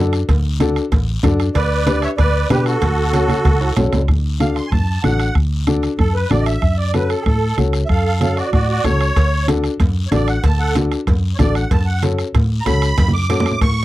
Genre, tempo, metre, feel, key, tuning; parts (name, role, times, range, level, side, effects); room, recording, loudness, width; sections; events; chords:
latin, cumbia; 189 BPM; 4/4; straight; D major; A4 = 439 Hz
clear upright piano; accompaniment; 0.0-13.5 s; C#4 to B4; -20 LUFS; left 3 dB
vintage muted fingered electric bass; bass; 0.0-13.8 s; A1 to B2; -18 LUFS; equal
bombo; percussion; 0.1-13.8 s; -19 LUFS; equal
guiro; percussion; 0.1-13.8 s; -35 LUFS; left 8 dB
congas; percussion; 0.3-13.8 s; -23 LUFS; right 2 dB
cowbell and timbales; percussion; 0.3-4.0, 9.2-13.8 s; -31 LUFS; right 6 dB
musette accordion; melody; 1.5-13.8 s; F#4 to D6; -21 LUFS; right 2 dB
little or no reverb; dry, close 1970s-style studio recording; -14 LUFS; side -16 dB against mid
0.0-4.1 A section; 4.1-13.8 B section
drum fill 3.3-4.1, 13.0-13.8; accordion solo 4.1-13.8
0.0 D; 1.6 G/D; 2.8 F#m/D; 4.1 D; 6.6 F#m; 9.2 D; 11.7 F#m